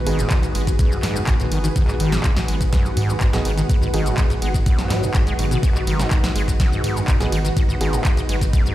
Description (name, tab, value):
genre	acid house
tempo	124 BPM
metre	4/4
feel	straight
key	G# minor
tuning	A4 = 440 Hz
part	lush unison pad	sustained chords	0.0-8.7 s	D#3 to G#4	-29 LUFS	equal	chorus, sidechain pumping
part	granular cloud pad	texture	0.0-8.7 s	F#4 to F#5	-28 LUFS	equal	built-in reverb, sidechain pumping
part	acid bass, saw	riff	0.1-8.7 s	F#2 to G#3	-25 LUFS	equal	overdrive, analog chorus, digital delay
part	warm grand piano	stabs	0.1-0.2, 3.3-4.1, 7.2-7.9 s	B3 to G#4	-28 LUFS	right 4 dB	digital delay
part	round analog bass	bass	0.1-8.5 s	G#1 to G#2	-23 LUFS	equal	sidechain pumping
part	punchy analog drum machine	drums	0.1-8.7 s	handclaps, hi-hat, ride cymbal, shaker, snare drum	-28 LUFS	equal	none
part	electronic kick drum	drums	0.3-8.6 s	none	-18 LUFS	equal	none
room	digital ambience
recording	played on a big sound system in a bare room, large studio reverb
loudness	-17 LUFS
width	side -14 dB against mid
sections	0.0-8.7 A section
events	none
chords	0.0 G#m7